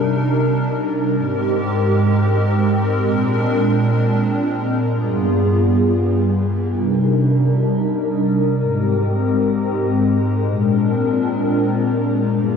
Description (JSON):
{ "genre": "hip hop", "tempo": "free time", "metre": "none", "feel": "none", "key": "C minor", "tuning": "A4 = 436 Hz", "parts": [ { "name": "hollow soft pad", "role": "solo", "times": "0.0-12.6 s", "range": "G2 to Bb4", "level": "-16 LUFS", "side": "equal", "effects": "ensemble chorus, low-pass filter" } ], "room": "moderate shimmer reverb, RT60 6.0 s", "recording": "dark, warm production, faint mains hum", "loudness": "-16 LUFS", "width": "side -6 dB against mid", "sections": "0.0-6.8 A section; 6.8-12.6 B section", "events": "filter sweep on analog synth pad 6.8-12.6", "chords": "0.0 Cm7; 1.2 Abmaj9; 3.0 Bb7; 4.9 G7b9; 6.8 Cm7; 8.6 Abmaj9; 10.5 Bb7" }